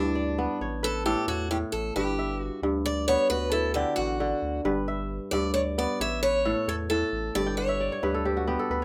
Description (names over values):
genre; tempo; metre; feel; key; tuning
west african traditional; 89 BPM (dotted quarters); 12/8; straight; G lydian; A4 = 440 Hz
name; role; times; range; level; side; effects
picked steel-string acoustic guitar; melody; 0.0-8.7 s; D4 to E5; -31 LUFS; equal; none
kora; arpeggios; 0.0-8.8 s; G2 to G5; -30 LUFS; equal; none
saturated sub bass; bass; 0.0-8.8 s; G1 to E2; -36 LUFS; equal; none
room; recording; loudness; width
moderate small room reverb, RT60 0.5 s; rough home demo mix; -27 LUFS; mono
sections
0.0-8.8 A section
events
steel-string acoustic guitar solo 0.0-8.8; kora fill 7.5-8.8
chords
0.0 G; 0.6 A; 2.0 G; 3.3 D; 4.7 G; 6.0 A; 7.4 G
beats
0.61 1.28 | 1.96 2.63 3.31 3.98 | 4.66 5.33 6.00 6.68 | 7.35 8.03 8.70